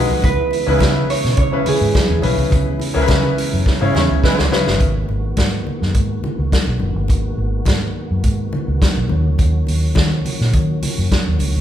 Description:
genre	disco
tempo	105 BPM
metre	4/4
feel	straight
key	G# minor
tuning	A4 = 440 Hz
part	clear concert grand piano	accompaniment	0.0-4.8 s	C#3 to C#5	-20 LUFS	left 2 dB	none
part	tonewheel organ	sustained chords	0.0-11.6 s	C#3 to F#4	-27 LUFS	right 1 dB	overdrive, chorus vibrato, slow rotary speaker
part	vintage muted fingered electric bass	bass	0.0-11.6 s	F#1 to D#3	-19 LUFS	equal	none
part	congas	percussion	0.1-11.5 s	none	-27 LUFS	left 2 dB	none
part	mellow electric guitar	melody	0.2-2.2 s	G#4 to C#5	-21 LUFS	right 3 dB	none
part	vintage drum kit	drums	0.2-11.5 s	hi-hat, kick drum, snare drum	-18 LUFS	equal	none
part	mellow horn section	stabs	0.7-4.5 s	G#3 to C#5	-24 LUFS	right 2 dB	none
room	moderate large studio reverb, RT60 1.2 s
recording	band playing live in one room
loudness	-14 LUFS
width	side -10 dB against mid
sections	0.0-4.8 A section; 4.8-11.6 B section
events	drum fill 3.7-4.8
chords	0.2 C#m7; 4.8 G#m9; 9.1 D#m7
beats	| 0.24 0.81 1.38 1.95 | 2.52 3.09 3.66 4.23 | 4.80 5.38 5.95 6.52 | 7.10 7.67 8.24 8.82 | 9.39 9.97 10.54 11.12

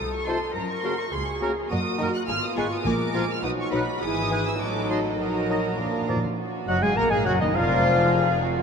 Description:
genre	quick classical-period movement for symphony orchestra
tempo	104 BPM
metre	2/4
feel	straight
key	unclear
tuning	A4 = 436 Hz
part	rich studio violin section	melody	0.0-8.6 s	F4 to Gb6	-32 LUFS	right 1 dB	none
part	dark studio cello section	bass	0.0-8.4 s	Eb2 to Bb4	-32 LUFS	left 1 dB	none
part	warm chamber double bass section	bass	0.0-8.4 s	F1 to Gb2	-31 LUFS	equal	none
part	clear clarinet	second line	0.3-8.4 s	Eb4 to Bb5	-30 LUFS	left 5 dB	none
part	clear oboe	second line	0.3-8.4 s	Bb4 to Bb5	-34 LUFS	right 5 dB	none
part	silver concert flute	second line	0.3-8.4 s	Cb5 to Bb5	-36 LUFS	right 2 dB	none
part	warm studio violin section	second line	0.3-8.4 s	Eb4 to Ab5	-34 LUFS	left 2 dB	none
part	dark studio viola section	accompaniment	0.3-8.4 s	Eb3 to Gb4	-32 LUFS	right 5 dB	none
part	mellow bassoon	accompaniment	0.3-8.4 s	C3 to Bb3	-32 LUFS	left 4 dB	none
part	dark French horn section	sustained chords	0.3-8.4 s	Eb3 to Gb4	-32 LUFS	equal	none
part	timpani	percussion	2.8-3.4, 5.8-6.3 s	Bb2	-34 LUFS	equal	none
part	clear trumpet	stabs	6.7-8.4 s	Eb4 to Bb4	-31 LUFS	right 6 dB	none
room	wet huge ambient reverb, RT60 9.3 s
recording	in a vast, echoing space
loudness	-22 LUFS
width	side -6 dB against mid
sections	0.0-6.4 A section; 6.4-8.6 B section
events	timpani fill 5.8-6.4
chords	0.0 F7; 0.6 Gb; 1.7 Ebm/Gb; 2.3 Fdim/Ab; 2.9 Bb7; 3.4 B; 4.0 E/G#; 4.6 Adim7(no3); 5.2 Ebm/Bb; 5.8 Bb; 6.4 Gbsus2; 7.0 Gbmaj13; 7.6 Bb/F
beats	| 0.56 1.13 | 1.70 2.28 | 2.85 3.43 | 4.02 4.60 | 5.20 5.79 | 6.38 6.97 | 7.56 8.13

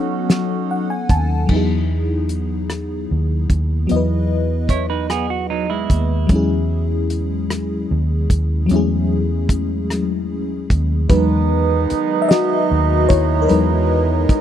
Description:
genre	slow six-eight R&B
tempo	50 BPM (dotted quarters)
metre	6/8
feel	straight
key	E major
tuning	A4 = 435 Hz
part	FM electric piano with soft pad layer	accompaniment	0.0-14.4 s	F#3 to A5	-20 LUFS	left 3 dB	chorus, tremolo
part	mellow horn section	stabs	0.0-1.1, 11.1-14.4 s	D#3 to F#4	-22 LUFS	right 15 dB	none
part	warm soul drum kit	drums	0.3-14.4 s	crash cymbal, hi-hat, kick drum, rim click, snare drum	-17 LUFS	equal	none
part	vintage muted fingered electric bass	bass	1.1-14.3 s	D#2 to E2	-19 LUFS	equal	none
part	semi-hollow electric guitar	second line	4.7-6.9 s	F#3 to C#5	-23 LUFS	right 10 dB	none
room	small room ambience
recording	dry, close 1970s-style studio recording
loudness	-16 LUFS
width	side -10 dB against mid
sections	0.0-1.5 A section; 1.5-11.1 B section; 11.1-14.4 A section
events	FM electric piano fill 0.3-1.5; FM electric piano solo 11.1-14.4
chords	0.0 B9; 1.5 Emaj9; 6.3 F#m9; 11.1 Emaj9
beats	0.30 | 1.50 2.70 | 3.90 5.10 | 6.30 7.50 | 8.70 9.90 | 11.10 12.30 | 13.50

